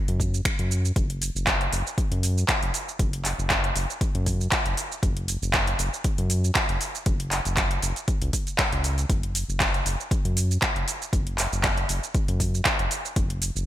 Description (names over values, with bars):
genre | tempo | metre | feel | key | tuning
afro house | 118 BPM | 4/4 | swing 54% on 16ths | unclear | A4 = 437 Hz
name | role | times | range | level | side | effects
round analog bass | bass | 0.1-13.7 s | F#1 to F#2 | -26 LUFS | equal | sidechain pumping
deep house drum kit | drums | 0.1-13.7 s | finger snaps, handclaps, hi-hat, shaker | -26 LUFS | right 1 dB | overdrive, studio reverb, gated reverb
electronic kick drum | drums | 0.2-13.3 s | none | -27 LUFS | equal | overdrive, studio reverb
room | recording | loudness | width
digital ambience | bright 1980s-style digital production | -22 LUFS | side -13 dB against mid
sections
0.0-13.7 A section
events
none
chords
none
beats
0.45 | 0.96 1.47 1.98 2.48 | 2.99 3.50 4.01 4.52 | 5.03 5.54 6.04 6.55 | 7.06 7.57 8.08 8.59 | 9.10 9.60 10.11 10.62 | 11.13 11.64 12.15 12.65 | 13.16